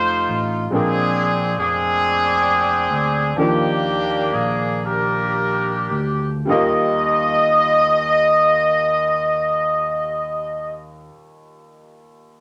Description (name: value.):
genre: slow gospel.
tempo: 34-47 BPM (dotted quarters).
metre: 6/8.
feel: straight.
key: Eb major.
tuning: A4 = 438 Hz.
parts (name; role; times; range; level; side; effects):
warm horn section; melody; 0.0-10.8 s; Bb3 to Eb5; -20 LUFS; equal; none.
warm grand piano; accompaniment; 0.0-12.4 s; Eb2 to G5; -28 LUFS; equal; none.
fingered electric bass; bass; 0.0-11.1 s; F1 to Eb2; -30 LUFS; equal; none.
room: wet studio reverb, RT60 0.8 s.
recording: none.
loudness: -19 LUFS.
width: mono.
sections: 0.0-6.5 A section; 6.5-10.0 B section.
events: slowing down 0.7-6.5.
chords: 0.0 F9; 0.7 Bb13; 3.4 Ebmaj9; 6.5 Ebadd9.